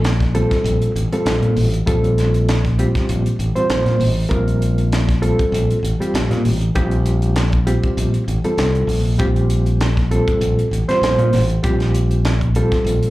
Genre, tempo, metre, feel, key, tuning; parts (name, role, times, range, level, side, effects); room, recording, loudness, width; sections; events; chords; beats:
electric jazz fusion; 98 BPM; 4/4; swing 54% on 16ths; A4 = 440 Hz
reed electric piano; accompaniment; 0.0-13.1 s; G3 to C5; -20 LUFS; right 1 dB; fast tremolo, plate reverb, slapback echo
modern bright fingered electric bass; bass; 0.0-13.0 s; A1 to Bb2; -17 LUFS; equal
crisp fusion drum kit; drums; 0.0-13.1 s; hi-hat, kick drum, snare drum; -22 LUFS; equal
little or no reverb; live gig heard through the venue's PA, club reverb; -15 LUFS; side -17 dB against mid
0.0-13.1 A section
reed electric piano fill 12.9
0.0 Bbsus2
0.04 0.65 1.26 | 1.87 2.48 3.09 3.70 | 4.31 4.92 5.53 6.14 | 6.75 7.36 7.97 8.58 | 9.19 9.80 10.41 11.02 | 11.63 12.24 12.85